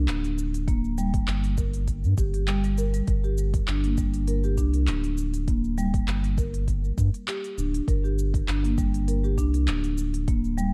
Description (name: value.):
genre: organic downtempo.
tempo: 100 BPM.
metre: 4/4.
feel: swing 54% on 16ths.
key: G minor pentatonic.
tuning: A4 = 440 Hz.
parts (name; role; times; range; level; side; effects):
round analog bass; bass; 0.0-10.7 s; D1 to G2; -28 LUFS; equal; sidechain pumping.
organic electronic drum kit; drums; 0.1-10.7 s; cabasa, handclaps, hi-hat; -38 LUFS; equal; none.
marimba with soft mallets; arpeggios; 0.7-10.7 s; G3 to Bb4; -32 LUFS; equal; digital delay.
electronic kick drum; drums; 0.7-10.4 s; none; -29 LUFS; equal; none.
room: light reverb, digital ambience.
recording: dark, warm production.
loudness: -25 LUFS.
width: mono.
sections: 0.0-10.7 A section.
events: none.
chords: 0.0 G5.